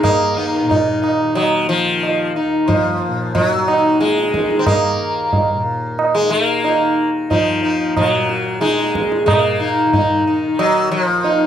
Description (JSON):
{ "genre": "indian classical, Hindustani", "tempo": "91 BPM", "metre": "7/4", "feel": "straight", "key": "Eb raga kafi", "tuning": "A4 = 441 Hz", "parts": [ { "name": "sitar", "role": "melody", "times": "0.0-11.5 s", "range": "F3 to Eb4", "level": "-16 LUFS", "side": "left 1 dB", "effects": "none" }, { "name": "tanpura", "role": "drone", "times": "0.0-11.5 s", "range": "Eb2 to Eb3", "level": "-26 LUFS", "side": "left 3 dB", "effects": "none" }, { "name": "tabla", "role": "percussion", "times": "0.0-11.5 s", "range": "none", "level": "-19 LUFS", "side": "right 3 dB", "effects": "none" } ], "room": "little or no reverb", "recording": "dry, close 1970s-style studio recording", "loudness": "-14 LUFS", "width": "side -9 dB against mid", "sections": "0.0-9.3 A section; 9.3-11.5 B section", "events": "none", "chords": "none", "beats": "| 0.03 0.70 1.36 2.02 2.68 3.34 4.00 | 4.66 5.32 5.98 6.64 7.30 7.96 8.61 | 9.27 9.93 10.58 11.23" }